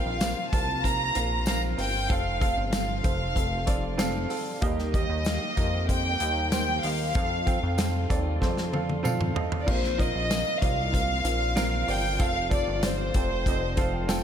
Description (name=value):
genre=piano-driven pop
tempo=95 BPM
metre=4/4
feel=straight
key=unclear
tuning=A4 = 440 Hz
part: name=warm studio violin section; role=melody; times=0.0-14.2 s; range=C5 to Bb5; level=-29 LUFS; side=equal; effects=slapback echo
part: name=warm upright piano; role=accompaniment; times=0.0-14.2 s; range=Bb2 to A5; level=-32 LUFS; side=right 2 dB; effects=slapback echo
part: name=muted chamber string section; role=sustained chords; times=0.0-14.2 s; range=C3 to G4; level=-41 LUFS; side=left 3 dB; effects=none
part: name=chorused synth bass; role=bass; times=0.0-14.2 s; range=F1 to F2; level=-30 LUFS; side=equal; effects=none
part: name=natural country drum kit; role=drums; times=0.2-14.2 s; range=crash cymbal, hi-hat, kick drum, snare drum, toms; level=-28 LUFS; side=equal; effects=none
part: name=tambourine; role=percussion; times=0.2-14.2 s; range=none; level=-42 LUFS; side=left 12 dB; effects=none
room=light reverb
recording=none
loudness=-24 LUFS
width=side -9 dB against mid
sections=0.0-9.7 A section; 9.7-14.2 A section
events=drum fill 8.4-9.7; upright piano fill 13.5-14.2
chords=0.0 Bbsus2; 2.1 F; 4.6 Eb; 7.2 F; 9.7 Bbsus2; 12.2 F